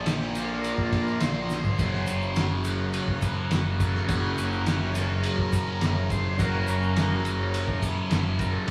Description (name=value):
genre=psychedelic rock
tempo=104 BPM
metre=4/4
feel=straight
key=unclear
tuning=A4 = 440 Hz
part: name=combo organ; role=sustained chords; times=0.0-8.7 s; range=C#3 to C5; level=-36 LUFS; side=equal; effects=none
part: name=thick fuzz guitar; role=riff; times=0.0-8.7 s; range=F#2 to Bb3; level=-30 LUFS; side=equal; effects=distortion, phaser
part: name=fuzz picked electric bass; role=bass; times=0.0-8.7 s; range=F#1 to Bb1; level=-33 LUFS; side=equal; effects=overdrive
part: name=cloth-damped thuddy drum kit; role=drums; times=0.1-8.7 s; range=kick drum, ride cymbal, snare drum, toms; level=-31 LUFS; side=equal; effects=none
part: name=egg shaker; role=percussion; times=0.1-8.5 s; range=none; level=-51 LUFS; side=equal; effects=none
room=light reverb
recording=band playing live in one room, studio ambience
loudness=-26 LUFS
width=mono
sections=0.0-8.7 A section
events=transistor combo organ solo 0.0-8.7; drum fill 1.5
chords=0.0 Bb; 1.8 F#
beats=0.07 0.65 1.22 | 1.79 2.37 2.94 3.52 | 4.09 4.67 5.24 5.82 | 6.39 6.97 7.54 8.12 | 8.69